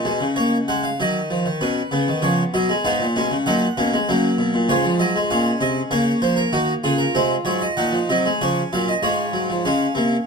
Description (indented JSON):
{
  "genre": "classical, baroque-style 4-part fugue for harpsichord",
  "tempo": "97 BPM",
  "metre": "4/4",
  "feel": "straight",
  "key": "F# major",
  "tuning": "A4 = 440 Hz",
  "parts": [
    { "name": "harpsichord", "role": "solo", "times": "0.0-10.3 s", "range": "G#2 to F#5", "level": "-18 LUFS", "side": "equal", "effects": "none" }
  ],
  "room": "light reverb",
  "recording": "dark, warm production",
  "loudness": "-18 LUFS",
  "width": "side -5 dB against mid",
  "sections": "0.0-9.7 A section",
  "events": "none",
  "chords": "0.0 F#; 1.0 B/D#; 2.2 C#7; 3.5 F#/A#; 4.7 C#/G#; 5.9 F#/C#; 7.2 G#7; 8.4 C#; 9.7 A#m",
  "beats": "0.37 0.99 1.60 | 2.22 2.85 3.46 4.08 | 4.70 5.31 5.92 6.54 | 7.16 7.78 8.40 9.03 | 9.65"
}